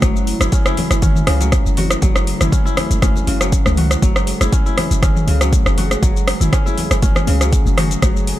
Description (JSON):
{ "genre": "afro house", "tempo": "120 BPM", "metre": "4/4", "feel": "swing 54% on 16ths", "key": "F# minor", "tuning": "A4 = 442 Hz", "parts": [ { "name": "warm analog pad", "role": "sustained chords", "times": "0.0-8.4 s", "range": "C#3 to G#4", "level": "-26 LUFS", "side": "right 1 dB", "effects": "chorus, sidechain pumping" }, { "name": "kora", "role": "arpeggios", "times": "0.0-8.4 s", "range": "C#3 to F#4", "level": "-24 LUFS", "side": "left 3 dB", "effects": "sidechain pumping, tape echo" }, { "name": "warm 808-style bass", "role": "bass", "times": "0.0-8.3 s", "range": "F#1 to C#2", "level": "-18 LUFS", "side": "equal", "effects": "sidechain pumping" }, { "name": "afro-pop drum kit", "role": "drums", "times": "0.0-8.4 s", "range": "hi-hat, rim click, shaker, toms", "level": "-20 LUFS", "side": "equal", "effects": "overdrive" }, { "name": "electronic kick drum", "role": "drums", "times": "0.0-8.1 s", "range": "none", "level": "-16 LUFS", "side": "equal", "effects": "overdrive" }, { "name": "congas", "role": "percussion", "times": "0.0-8.1 s", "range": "none", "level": "-26 LUFS", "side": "left 4 dB", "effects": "none" } ], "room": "little or no reverb", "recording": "none", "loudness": "-13 LUFS", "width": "side -14 dB against mid", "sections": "0.0-8.4 A section", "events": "none", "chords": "0.0 F#m9", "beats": "| 0.02 0.52 1.02 1.52 | 2.02 2.52 3.02 3.52 | 4.02 4.52 5.02 5.52 | 6.02 6.52 7.02 7.52 | 8.02" }